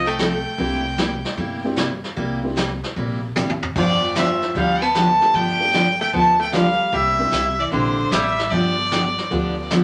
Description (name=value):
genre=country, western swing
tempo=151 BPM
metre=4/4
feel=swing 67% on 8ths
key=C major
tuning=A4 = 440 Hz
part: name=clear fiddle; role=melody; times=0.0-9.7 s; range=C5 to A5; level=-22 LUFS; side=equal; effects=none
part: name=archtop guitar, miked and amplified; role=second line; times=0.0-9.7 s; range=D3 to B3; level=-29 LUFS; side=equal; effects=none
part: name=picked steel-string acoustic guitar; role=accompaniment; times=0.0-9.8 s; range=C3 to A4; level=-25 LUFS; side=equal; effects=none
part: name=upright bass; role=bass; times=0.0-9.8 s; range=G1 to D2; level=-33 LUFS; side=equal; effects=none
part: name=vintage brush drum kit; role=drums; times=0.2-9.8 s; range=brushed snare drum, crash cymbal, hi-hat, kick drum, snare drum, toms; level=-30 LUFS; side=equal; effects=none
part: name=honky-tonk upright piano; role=accompaniment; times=0.6-9.8 s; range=A3 to A4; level=-30 LUFS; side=equal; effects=none
room=wet studio reverb, RT60 0.8 s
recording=none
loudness=-20 LUFS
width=mono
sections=0.0-9.8 A section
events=drum fill 3.4-3.8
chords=0.0 F9; 0.6 C9; 3.8 G9; 6.9 C9; 8.5 G9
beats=0.19 | 0.59 0.98 1.38 1.77 | 2.17 2.57 2.96 3.36 | 3.75 4.15 4.55 4.95 | 5.34 5.74 6.13 6.53 | 6.93 7.33 7.72 8.12 | 8.52 8.91 9.31 9.71